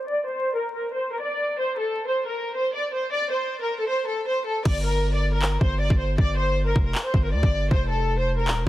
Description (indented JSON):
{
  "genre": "hip hop, trap",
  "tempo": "157 BPM",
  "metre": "4/4",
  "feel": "half-time",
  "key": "G minor",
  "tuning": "A4 = 440 Hz",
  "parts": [
    { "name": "warm studio violin section", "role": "melody", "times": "0.0-8.7 s", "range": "A4 to D5", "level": "-25 LUFS", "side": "equal", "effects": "low-pass filter" },
    { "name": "distorted 808-style bass", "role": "bass", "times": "4.7-8.7 s", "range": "Eb1 to D2", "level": "-24 LUFS", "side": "equal", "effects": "distortion" },
    { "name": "trap drum kit", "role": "drums", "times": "4.7-8.7 s", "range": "crash cymbal, handclaps, kick drum", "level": "-23 LUFS", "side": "equal", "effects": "none" }
  ],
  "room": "digital ambience",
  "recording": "dense, heavily limited modern master, vinyl crackle",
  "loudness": "-22 LUFS",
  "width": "side -15 dB against mid",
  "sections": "0.0-4.7 A section; 4.7-8.7 B section",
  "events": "filter sweep on violin section 0.0-4.7; hi-hats muted 4.7-8.7",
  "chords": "0.0 N.C.; 4.7 G5; 7.7 F"
}